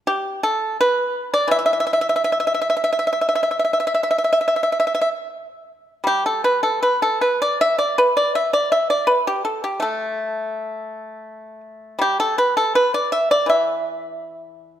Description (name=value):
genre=chinese traditional, Chinese solo plucked strings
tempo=81 BPM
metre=4/4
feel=rubato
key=E yu mode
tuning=A4 = 440 Hz
part: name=pipa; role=solo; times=0.1-14.8 s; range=E3 to E5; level=-18 LUFS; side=equal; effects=none
room=moderate scoring stage reverb, RT60 1.7 s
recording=none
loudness=-17 LUFS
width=side -10 dB against mid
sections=0.0-6.1 A section; 6.1-14.8 B section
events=none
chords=none